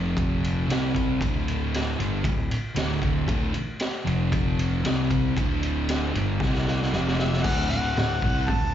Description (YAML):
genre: garage rock duo or trio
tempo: 115 BPM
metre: 4/4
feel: straight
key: unclear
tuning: A4 = 440 Hz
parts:
  - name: fuzz guitar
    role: riff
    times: 0.0-8.7 s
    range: D2 to C4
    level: -27 LUFS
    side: equal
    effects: distortion
  - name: fuzz picked electric bass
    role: bass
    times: 0.0-8.7 s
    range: D1 to C2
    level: -27 LUFS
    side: equal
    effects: overdrive
  - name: raw garage drum kit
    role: drums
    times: 0.2-8.6 s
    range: crash cymbal, hi-hat, kick drum, ride cymbal, snare drum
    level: -28 LUFS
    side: equal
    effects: none
  - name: warm harmonica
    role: melody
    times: 7.2-8.7 s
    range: E5 to A5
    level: -28 LUFS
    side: left 2 dB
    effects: overdrive
room: small room reverb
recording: live gig heard through the venue's PA, club reverb, nothing above 7.5 kHz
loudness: -22 LUFS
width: side -10 dB against mid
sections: 0.0-7.5 A section; 7.5-8.7 B section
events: drum fill 6.4-7.5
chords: 0.0 F5; 0.7 C5; 1.2 D5; 4.1 F5; 4.8 C5; 5.4 D5; 6.4 C5; 6.9 F5; 7.5 D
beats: 0.17 0.69 | 1.20 1.72 2.24 2.76 | 3.28 3.80 4.32 4.84 | 5.37 5.89 6.41 6.93 | 7.45 7.97 8.50